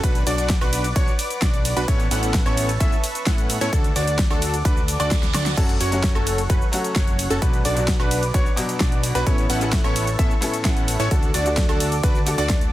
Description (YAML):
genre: EDM, festival progressive house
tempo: 130 BPM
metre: 4/4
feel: straight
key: unclear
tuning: A4 = 440 Hz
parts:
  - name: lush unison pad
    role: sustained chords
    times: 0.0-12.7 s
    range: F#4 to D6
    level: -32 LUFS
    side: equal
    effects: chorus, sidechain pumping
  - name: clear concert grand piano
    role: arpeggios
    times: 0.0-12.5 s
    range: A4 to F#5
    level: -29 LUFS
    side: equal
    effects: sidechain pumping, digital delay
  - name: supersaw stab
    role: riff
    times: 0.0-12.5 s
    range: B3 to F#5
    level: -27 LUFS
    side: equal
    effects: sidechain pumping, digital delay
  - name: fat analog bass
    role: bass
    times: 0.0-12.7 s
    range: F#1 to A2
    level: -26 LUFS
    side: equal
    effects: sidechain pumping
  - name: big-room dance drum kit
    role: drums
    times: 0.0-12.7 s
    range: crash cymbal, hi-hat, ride cymbal, shaker, snare drum, woodblock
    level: -27 LUFS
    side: equal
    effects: overdrive, studio reverb
  - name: electronic kick drum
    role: drums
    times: 0.0-12.6 s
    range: none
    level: -20 LUFS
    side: equal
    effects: overdrive, studio reverb
  - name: reverse cymbal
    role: sound effects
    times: 4.8-5.6 s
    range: none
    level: -34 LUFS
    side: right 8 dB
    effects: none
  - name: bright grand piano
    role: accompaniment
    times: 5.6-12.7 s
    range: A2 to A4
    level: -29 LUFS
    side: left 2 dB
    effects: sidechain pumping, digital delay
room: little or no reverb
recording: dense, heavily limited modern master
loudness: -18 LUFS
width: side -15 dB against mid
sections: 0.0-12.7 A section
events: reverse cymbal 4.8-5.6; drum fill 5.2-5.6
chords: 0.0 Bm; 1.9 Aadd9; 3.7 D; 5.6 F#m; 7.4 Bm; 9.3 Aadd9; 11.1 D